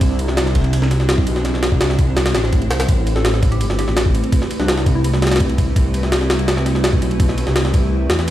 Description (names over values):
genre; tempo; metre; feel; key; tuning
drum and bass, jungle; 167 BPM; 4/4; straight; A minor; A4 = 440 Hz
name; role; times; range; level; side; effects
dark detuned saw bass; bass; 0.0-8.3 s; G1 to E2; -18 LUFS; equal; none
jungle sampler-style drum kit; drums; 0.0-8.3 s; kick drum, ride cymbal, snare drum; -17 LUFS; equal; none
soft struck synth lead; melody; 3.2-5.1 s; D4 to A4; -28 LUFS; left 2 dB; chorus, dub echo
room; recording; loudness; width
light reverb; played on a big sound system in a bare room, stone room reverb; -14 LUFS; side -13 dB against mid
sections
0.0-8.3 A section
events
none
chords
0.0 Cadd9; 2.9 Am9